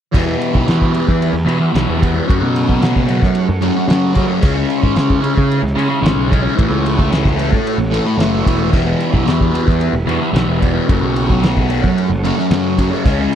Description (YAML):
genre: psychedelic rock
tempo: 112 BPM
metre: 4/4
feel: straight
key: unclear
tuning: A4 = 440 Hz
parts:
  - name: tonewheel organ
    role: sustained chords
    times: 0.1-13.3 s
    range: G3 to C#5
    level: -27 LUFS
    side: right 6 dB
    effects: slow rotary speaker
  - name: fuzz guitar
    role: riff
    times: 0.1-13.3 s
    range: E2 to C#4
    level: -16 LUFS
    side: left 1 dB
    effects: distortion, phaser
  - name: fuzz picked electric bass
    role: bass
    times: 0.1-13.3 s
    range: E1 to F#3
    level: -18 LUFS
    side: equal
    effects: overdrive
  - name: cloth-damped thuddy drum kit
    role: drums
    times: 0.1-13.3 s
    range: crash cymbal, kick drum, ride cymbal, snare drum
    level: -18 LUFS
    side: equal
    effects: none
room: little or no reverb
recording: dry, close 1970s-style studio recording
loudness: -13 LUFS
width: side -9 dB against mid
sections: 0.1-13.3 A section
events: none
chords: 0.1 Em; 2.3 F#m; 4.4 C#m; 6.6 A6; 8.7 Em; 10.9 F#m